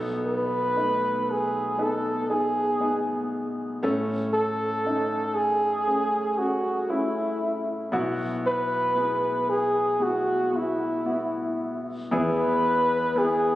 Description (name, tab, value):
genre	pop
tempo	58 BPM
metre	4/4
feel	straight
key	unclear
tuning	A4 = 439 Hz
part	warm concert grand piano	accompaniment	0.0-13.6 s	A1 to B4	-28 LUFS	left 1 dB	none
part	breathy flugelhorn	melody	0.3-13.6 s	E4 to B4	-24 LUFS	equal	none
room	wet concert hall reverb, RT60 2.0 s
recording	recorded on a phone in the room, club reverb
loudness	-23 LUFS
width	side -15 dB against mid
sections	0.0-12.1 A section; 12.1-13.6 B section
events	none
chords	0.0 B7; 3.8 Amaj7; 7.9 Bsus4; 12.1 E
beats	0.77 1.79 2.81 | 3.83 4.85 5.87 6.90 | 7.93 8.96 10.00 11.05 | 12.11 13.14